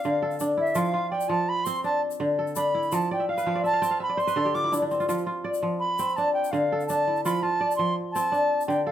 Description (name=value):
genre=west african traditional, West African string and xylophone music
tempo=111 BPM (dotted quarters)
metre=12/8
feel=straight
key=F lydian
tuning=A4 = 440 Hz
part: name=bright reedy wooden flute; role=melody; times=0.0-8.9 s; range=E5 to D6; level=-26 LUFS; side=right 2 dB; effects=none
part: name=kora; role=arpeggios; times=0.0-8.9 s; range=D3 to G5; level=-25 LUFS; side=left 1 dB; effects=none
part: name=egg shaker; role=percussion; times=0.0-8.7 s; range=none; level=-41 LUFS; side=left 7 dB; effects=none
room=light reverb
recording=band playing live in one room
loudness=-23 LUFS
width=side -11 dB against mid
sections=0.0-8.9 A section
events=flute solo 0.0-8.9; kora fill 3.1-5.1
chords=0.0 Dm; 0.8 F5; 1.8 D5; 2.9 F; 4.0 N.C.; 5.1 F5; 6.2 Dm; 7.2 F; 8.3 Dm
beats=0.23 | 0.77 1.31 1.85 2.39 | 2.93 3.47 4.01 4.55 | 5.09 5.63 6.17 6.71 | 7.25 7.79 8.33 8.87